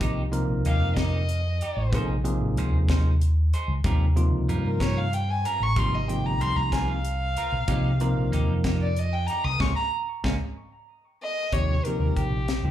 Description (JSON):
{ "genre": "electric jazz fusion", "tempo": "63 BPM (dotted quarters)", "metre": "6/8", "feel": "straight", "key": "Eb mixolydian", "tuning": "A4 = 440 Hz", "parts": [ { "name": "bell-like tine electric piano", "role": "accompaniment", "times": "0.0-12.7 s", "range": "C3 to Bb4", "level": "-28 LUFS", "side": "right 1 dB", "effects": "fast stereo tremolo, slapback echo" }, { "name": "electric guitar at the edge of break-up", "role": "stabs", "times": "0.0-10.4 s", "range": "G3 to C5", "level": "-36 LUFS", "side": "right 3 dB", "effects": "lush chorus, slapback echo" }, { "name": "fingered electric bass", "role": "bass", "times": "0.0-12.7 s", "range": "G1 to G2", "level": "-25 LUFS", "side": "equal", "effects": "none" }, { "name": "crisp fusion drum kit", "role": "drums", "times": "0.0-12.6 s", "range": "hi-hat, kick drum, snare drum", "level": "-30 LUFS", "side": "left 1 dB", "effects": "none" }, { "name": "dark violin", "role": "melody", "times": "0.7-12.7 s", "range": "G4 to Eb6", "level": "-30 LUFS", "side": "left 1 dB", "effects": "slapback echo" } ], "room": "little or no reverb", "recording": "live gig heard through the venue's PA, club reverb", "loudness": "-22 LUFS", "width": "side -12 dB against mid", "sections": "0.0-11.5 A section; 11.5-12.7 B section", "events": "violin solo 0.0-11.5; band accent 9.6-11.5; drum fill 10.6-11.5; tine electric piano fill 10.6-11.5", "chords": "0.0 Cm7; 1.9 Bbm11; 3.9 Eb9; 5.8 Abmaj13; 7.7 Cm7; 9.6 Db5; 11.5 Eb7" }